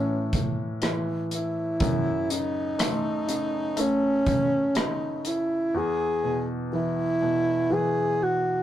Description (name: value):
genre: pop ballad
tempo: 61 BPM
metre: 4/4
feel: straight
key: unclear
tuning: A4 = 440 Hz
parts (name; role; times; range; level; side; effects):
- dark alto saxophone; melody; 0.0-8.6 s; C#4 to G#4; -25 LUFS; equal; none
- clear baby grand piano; accompaniment; 0.0-8.6 s; E2 to A3; -29 LUFS; left 1 dB; none
- modern studio drum kit; drums; 0.3-5.5 s; hi-hat, kick drum, rim click; -28 LUFS; equal; none
room: moderate small room ambience, RT60 0.5 s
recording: rough rehearsal-room recording, tube saturation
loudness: -23 LUFS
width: side -12 dB against mid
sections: 0.0-8.6 A section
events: none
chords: 0.0 A5; 1.8 F#m; 5.7 E